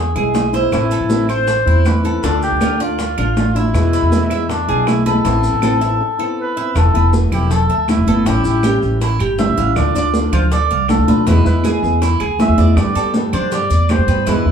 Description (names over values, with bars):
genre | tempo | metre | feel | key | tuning
latin, Cuban son and guajira | 160 BPM | 4/4 | straight | A minor | A4 = 442 Hz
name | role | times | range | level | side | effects
trumpet with cup mute | melody | 0.0-14.5 s | D4 to E5 | -20 LUFS | equal | none
Cuban tres | arpeggios | 0.0-14.5 s | D4 to F5 | -22 LUFS | right 4 dB | none
upright bass | bass | 0.0-14.5 s | E1 to G2 | -17 LUFS | equal | none
flamenco guitar | accompaniment | 0.2-14.5 s | B2 to G4 | -20 LUFS | left 3 dB | none
bongos | percussion | 0.2-14.5 s | none | -26 LUFS | left 2 dB | none
claves | percussion | 0.2-14.1 s | none | -33 LUFS | right 6 dB | none
congas | percussion | 0.2-14.5 s | none | -20 LUFS | equal | none
maracas | percussion | 0.3-14.5 s | none | -36 LUFS | left 2 dB | none
room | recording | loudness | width
wet studio ambience, RT60 0.5 s | heard from further back in the room, small room ambience | -13 LUFS | side -7 dB against mid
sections
0.0-6.8 A section; 6.8-14.5 B section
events
break 6.0-6.8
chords
0.0 E; 0.7 Am; 2.2 Dm; 3.7 E; 5.3 Amadd9; 6.8 Esus4; 8.3 A7; 9.8 Dm; 11.3 E; 12.8 Gadd9